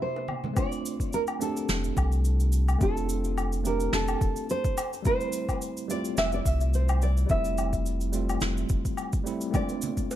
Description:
sunset chillout; 107 BPM; 4/4; swing 54% on 16ths; F major; A4 = 437 Hz
nylon-string guitar; melody; 0.0-10.2 s; E4 to E5; -31 LUFS; right 1 dB; ping-pong delay
tine electric piano; accompaniment; 0.0-10.2 s; C3 to G4; -33 LUFS; equal; auto-pan, vintage 12-bit sampler grit
bongos and congas; percussion; 0.2-0.5, 9.5-10.2 s; -35 LUFS; right 5 dB
woodblock, cabasa and snare drum; drums; 0.3-10.2 s; -34 LUFS; left 1 dB
electronic kick drum; drums; 0.6-10.1 s; -28 LUFS; equal
warm sub bass; bass; 1.7-8.8 s; F1 to C2; -26 LUFS; equal
small room ambience; dark, warm production; -25 LUFS; side -12 dB against mid
0.6-10.2 A section
0.0 C7; 0.6 F69; 4.8 Fmaj7; 9.5 Bbmaj7 (rootless)
0.01 | 0.57 1.13 1.69 2.25 | 2.81 3.37 3.93 4.49 | 5.05 5.61 6.17 6.74 | 7.30 7.86 8.42 8.98 | 9.54 10.10

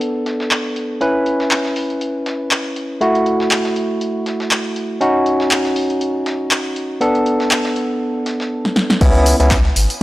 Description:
deep house; 120 BPM; 4/4; swing 56% on 16ths; C# phrygian; A4 = 440 Hz
barky tine electric piano; stabs; 0.0-9.6 s; A3 to B4; -17 LUFS; equal; overdrive, sidechain pumping, tape echo
dusty soul sampler-style drum kit; drums; 0.0-10.0 s; hi-hat, snare drum; -29 LUFS; left 1 dB; high-pass filter on hats, low-pass filter on hats, studio reverb, high-pass filter on snare, low-pass filter on snare
punchy analog drum machine; drums; 0.5-10.0 s; crash cymbal, handclaps, hi-hat, snare drum, tambourine; -18 LUFS; equal; overdrive, low-pass filter on snare, studio reverb, low-pass filter on hats, low-pass filter on cymbals, low-pass filter on perc
round analog bass; bass; 9.0-9.9 s; G#1 to C#2; -15 LUFS; equal; sidechain pumping
electronic kick drum; drums; 9.0-9.6 s; -14 LUFS; equal; studio reverb
light reverb; dry, gritty hardware recording; -15 LUFS; side -17 dB against mid
0.0-9.0 A section; 9.0-10.0 B section
filter sweep on drum 0.0-9.0; drum fill 8.6-9.0; drop 9.0-10.0
0.0 Bm7; 1.0 C#m7; 3.0 F#m7; 5.0 D#m7; 7.0 Bm7; 9.0 C#m7
0.01 0.51 | 1.01 1.51 2.01 2.51 | 3.01 3.51 4.01 4.51 | 5.01 5.51 6.01 6.51 | 7.01 7.51 8.01 8.51 | 9.01 9.51

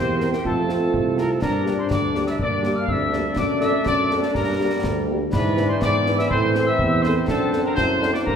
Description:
military-style march for wind band; 123 BPM; 2/4; straight; A4 = 436 Hz
mellow trumpet section; melody; 0.0-8.4 s; G4 to F5; -26 LUFS; left 1 dB
clear woodwind section; second line; 0.0-8.4 s; C4 to D5; -31 LUFS; left 1 dB
dark euphonium; second line; 0.0-8.4 s; Bb3 to G4; -27 LUFS; equal
mellow piccolo; second line; 0.0-8.4 s; G5 to F6; -29 LUFS; left 2 dB
warm trombone section; sustained chords; 0.0-8.4 s; D3 to D4; -28 LUFS; right 1 dB
mellow tuba; bass; 0.0-8.4 s; C2 to A2; -25 LUFS; right 2 dB
mellow French horn section; accompaniment; 0.2-8.1 s; Bb3 to B4; -30 LUFS; left 1 dB
concert snare drum, concert bass drum and clash cymbals; drums; 0.2-8.4 s; -28 LUFS; left 1 dB
wet recital hall reverb, RT60 1.7 s; recorded in a church or concert hall; -18 LUFS; side -7 dB against mid
0.0-8.4 A section
0.4 F; 1.4 Gm; 3.4 D7/F#; 4.3 Gm; 5.3 E7/G#; 6.3 Am; 7.3 D7/F#
| 0.44 0.93 | 1.42 1.91 | 2.39 2.88 | 3.37 3.86 | 4.35 4.84 | 5.33 5.82 | 6.30 6.79 | 7.28 7.77 | 8.26

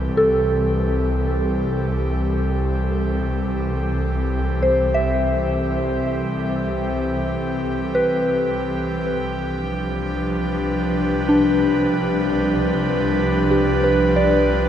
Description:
ambient; 54 BPM; 4/4; straight; C major; A4 = 440 Hz
airy breathy pad; sustained chords; 0.0-14.7 s; E3 to B4; -22 LUFS; equal; chorus
soft synth bell; arpeggios; 0.0-14.7 s; D4 to E5; -22 LUFS; left 1 dB; chorus, diffuse ambient delay
warm studio double bass section; bass; 0.0-14.7 s; C2; -24 LUFS; equal
wet huge ambient reverb, RT60 7.9 s; -18 LUFS; side -10 dB against mid
0.0-14.7 A section
fade-in on analog synth pad 0.0-14.7
0.0 C6; 9.1 G7/C
| 0.17 1.28 2.39 3.50 | 4.61 5.72 6.84 7.95 | 9.06 10.17 11.28 12.39 | 13.50 14.61

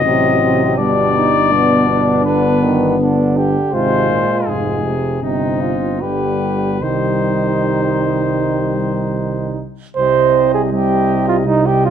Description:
classical, brass quintet; 74-82 BPM; 4/4; rubato; C minor; A4 = 440 Hz
mellow cornet; melody; 0.0-11.9 s; Eb4 to Eb5; -19 LUFS; left 8 dB
bright trombone; accompaniment; 0.0-11.9 s; Ab2 to Eb3; -22 LUFS; right 3 dB
warm French horn; accompaniment; 0.0-11.9 s; F#3 to C4; -21 LUFS; left 4 dB
mellow tuba; bass; 0.0-11.9 s; F1 to C2; -20 LUFS; right 3 dB
mellow flugelhorn; second line; 0.1-11.9 s; C4 to C5; -19 LUFS; right 6 dB
light reverb; dark, warm production; -13 LUFS; side -8 dB against mid
0.0-10.0 A section; 10.0-11.9 B section
0.0 F#dim7; 0.8 G; 3.7 Fm/Ab; 5.2 Cm/G; 6.0 G; 6.8 Cm
0.05 | 0.78 1.52 2.26 3.00 | 3.74 4.47 5.22 6.02 | 6.81 7.61 8.40 9.19 | 9.97 10.73 11.47

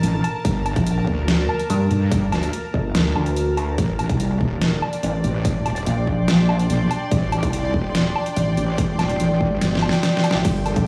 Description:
heavy wobble dubstep; 144 BPM; 4/4; half-time; A4 = 440 Hz
wobble bass; bass; 0.0-10.7 s; Eb1 to G2; -23 LUFS; equal; chorus, overdrive
dubstep drum kit; drums; 0.0-10.8 s; crash cymbal, hi-hat, snare drum, woodblock; -26 LUFS; equal; overdrive, studio reverb
granular cloud pad; texture; 0.0-10.9 s; Bb3 to C6; -30 LUFS; equal; built-in reverb, sidechain pumping
electronic kick drum; drums; 0.4-10.8 s; -27 LUFS; equal; overdrive, studio reverb
pulsing pluck wobble bass; bass; 0.8-10.9 s; G1 to G2; -22 LUFS; equal; chorus, overdrive
supersaw pad; sustained chords; 10.4-10.9 s; Bb3 to A4; -33 LUFS; equal; phaser, sidechain pumping
light reverb; played on a big sound system in a bare room, stone room reverb, small room ambience; -21 LUFS; mono
0.0-10.9 A section
drum fill 9.6-10.4
0.0 Gmadd9; 3.8 Adim
0.03 | 0.45 0.86 1.28 1.70 | 2.12 2.53 2.95 3.37 | 3.78 4.20 4.62 5.03 | 5.45 5.87 6.28 6.70 | 7.12 7.53 7.95 8.37 | 8.78 9.20 9.62 10.03 | 10.45 10.87

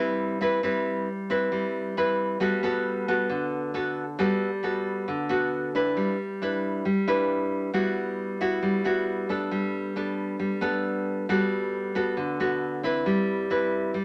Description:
bossa nova; 135 BPM; 4/4; straight; G major; A4 = 440 Hz
nylon-string guitar; solo; 0.0-14.0 s; D3 to B4; -27 LUFS; equal
moderate studio reverb, RT60 0.6 s; -27 LUFS; mono
0.0-14.0 A section
0.0 Cmaj7/G; 2.4 Gmaj9; 6.0 Em7/G; 7.7 Gmaj13; 9.5 A9sus4/G; 11.3 Gmaj9; 13.1 Am9/G (rootless)
0.19 | 0.64 1.08 1.52 1.97 | 2.41 2.86 3.30 3.74 | 4.19 4.63 5.08 5.52 | 5.96 6.41 6.85 7.30 | 7.74 8.18 8.63 9.07 | 9.51 9.96 10.40 10.84 | 11.29 11.73 12.17 12.62 | 13.06 13.50 13.95

